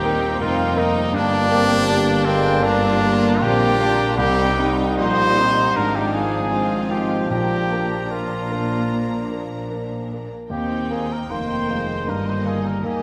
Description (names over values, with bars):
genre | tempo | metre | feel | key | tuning
classical | 77 BPM | 4/4 | uneven beats, rubato | Eb major | A4 = 441 Hz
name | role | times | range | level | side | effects
rich studio violin section | melody | 0.0-13.0 s | Eb5 to Bb5 | -38 LUFS | equal | none
warm concert grand piano | melody | 0.0-13.0 s | C2 to Bb4 | -28 LUFS | equal | none
rich studio violin section | second line | 0.0-13.0 s | C4 to G4 | -37 LUFS | equal | none
silver concert flute | second line | 0.0-13.0 s | C5 to C6 | -32 LUFS | equal | none
warm clarinet | second line | 0.0-13.0 s | D4 to Eb4 | -35 LUFS | equal | none
rich studio viola section | accompaniment | 0.0-13.0 s | Bb3 to Eb4 | -32 LUFS | equal | none
warm bassoon | accompaniment | 0.0-13.0 s | F3 to Bb3 | -32 LUFS | equal | none
clear trombone section | sustained chords | 0.0-13.0 s | Eb3 to Eb4 | -32 LUFS | equal | none
mellow French horn section | sustained chords | 0.0-13.0 s | G3 to F4 | -32 LUFS | equal | none
clear trumpet | stabs | 0.0-13.0 s | C4 to C5 | -25 LUFS | equal | none
dark tuba | bass | 0.0-13.0 s | F1 to Eb2 | -33 LUFS | equal | none
rich studio double bass section | bass | 0.0-13.0 s | F1 to Eb2 | -32 LUFS | equal | none
warm studio cello section | bass | 0.0-13.0 s | Eb2 to C3 | -32 LUFS | equal | none
timpani | percussion | 7.3-8.5 s | Bb2 | -36 LUFS | equal | none
room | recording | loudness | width
wet scoring stage reverb, RT60 2.1 s | none | -20 LUFS | mono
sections
0.0-13.0 A section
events
none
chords
0.0 Eb; 1.1 Gm; 4.2 Cm; 5.8 Fm7/Ab; 7.3 Bb; 10.5 Eb; 12.1 Eb/G